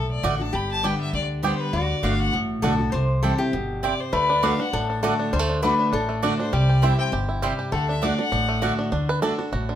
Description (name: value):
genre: bluegrass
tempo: 200 BPM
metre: 4/4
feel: swing 55% on 8ths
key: D mixolydian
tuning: A4 = 442 Hz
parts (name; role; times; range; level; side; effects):
- clear fiddle; melody; 0.0-8.6 s; B4 to B5; -28 LUFS; left 3 dB; plate reverb
- lap resonator guitar; second line; 0.0-8.9 s; F#4 to C5; -27 LUFS; left 4 dB; none
- picked steel-string acoustic guitar; accompaniment; 0.0-9.8 s; G2 to G4; -26 LUFS; equal; none
- upright bass; bass; 0.0-9.8 s; G1 to D2; -26 LUFS; equal; none
- mandolin; stabs; 0.2-9.3 s; A3 to A5; -27 LUFS; right 7 dB; none
- bluegrass banjo; melody; 4.1-9.8 s; D3 to B4; -28 LUFS; right 3 dB; plate reverb
room: moderate studio reverb, RT60 0.5 s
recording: none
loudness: -20 LUFS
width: side -10 dB against mid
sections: 0.0-8.9 A section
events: none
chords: 0.0 D; 0.5 G; 1.7 D; 2.9 C; 4.1 D; 6.5 C; 7.7 D